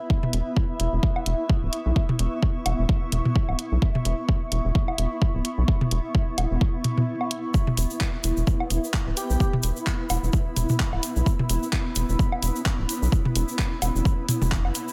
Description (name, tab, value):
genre	minimal techno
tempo	129 BPM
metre	4/4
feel	swing 56% on 16ths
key	unclear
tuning	A4 = 440 Hz
part	granular cloud pad	texture	0.0-14.9 s	B3 to C#6	-33 LUFS	equal	built-in reverb, sidechain pumping
part	electronic kick drum	drums	0.1-14.6 s	none	-25 LUFS	equal	none
part	electronic toms and woodblock	percussion	0.2-14.7 s	none	-29 LUFS	equal	none
part	rubbery square bass	bass	0.3-14.7 s	D1 to B1	-26 LUFS	equal	sidechain pumping
part	house drum kit	drums	0.3-14.9 s	handclaps, hi-hat	-33 LUFS	equal	none
part	tube shaker	percussion	7.5-14.9 s	none	-38 LUFS	equal	none
part	flickering grainy texture	texture	8.1-14.9 s	B3 to B4	-43 LUFS	equal	none
part	airy dreamy lead	melody	9.2-9.5 s	G4	-35 LUFS	equal	chorus, tape echo
room	light reverb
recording	none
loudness	-24 LUFS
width	mono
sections	0.0-14.9 A section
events	break 7.1-7.5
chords	0.0 E5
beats	| 0.10 0.56 1.03 1.50 | 1.96 2.42 2.89 3.35 | 3.82 4.29 4.75 5.22 | 5.68 6.15 6.61 7.08 | 7.54 8.01 8.47 8.94 | 9.40 9.87 10.33 10.80 | 11.26 11.73 12.19 12.66 | 13.12 13.59 14.05 14.52